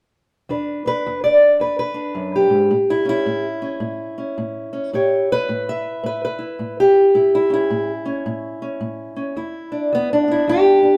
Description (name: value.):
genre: acoustic country blues, solo or duo.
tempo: 108 BPM.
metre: 4/4.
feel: swing 63% on 8ths.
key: unclear.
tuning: A4 = 440 Hz.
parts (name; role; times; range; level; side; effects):
fingerpicked steel-string acoustic guitar; solo; 0.5-11.0 s; E2 to E5; -19 LUFS; equal; none.
room: moderate stone room reverb, RT60 1.2 s.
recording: band playing live in one room.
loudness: -19 LUFS.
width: mono.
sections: 0.5-9.4 A section; 9.4-11.0 B section.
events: none.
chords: 0.5 E7(no3); 2.7 A7; 9.4 E7(no3).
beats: | 0.49 1.04 1.60 2.15 | 2.71 3.26 3.82 4.37 | 4.93 5.48 6.04 6.59 | 7.15 7.70 8.26 8.81 | 9.37 9.92 10.47.